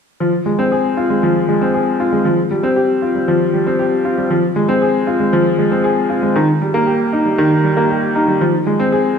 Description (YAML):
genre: electronica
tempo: 117 BPM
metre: 4/4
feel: straight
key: F minor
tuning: A4 = 438 Hz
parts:
  - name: clear upright piano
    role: solo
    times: 0.2-9.2 s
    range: Eb3 to Ab4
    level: -13 LUFS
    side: equal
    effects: none
room: wet recital hall reverb, RT60 1.4 s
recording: none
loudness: -13 LUFS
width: side -6 dB against mid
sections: 0.2-9.2 A section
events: none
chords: none